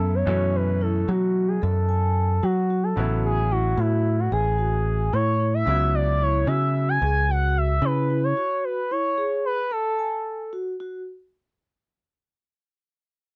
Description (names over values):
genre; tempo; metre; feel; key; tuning
progressive instrumental, progressive; 222 BPM (eighths); 5/8; straight; F# minor; A4 = 440 Hz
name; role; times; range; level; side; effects
expressive portamento lead; melody; 0.0-10.5 s; E4 to G#5; -27 LUFS; equal; chorus
bright grand piano; accompaniment; 0.0-7.0 s; B2 to E4; -37 LUFS; equal; none
vibraphone with soft mallets; arpeggios; 0.0-11.0 s; B3 to G#5; -34 LUFS; equal; none
picked electric bass; bass; 0.0-8.3 s; A1 to F#3; -25 LUFS; equal; none
room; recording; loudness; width
little or no reverb; dry, close 1970s-style studio recording; -23 LUFS; mono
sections
0.3-11.1 A section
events
none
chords
0.3 F#m; 3.0 A; 5.7 C#m; 8.4 E; 9.7 F#m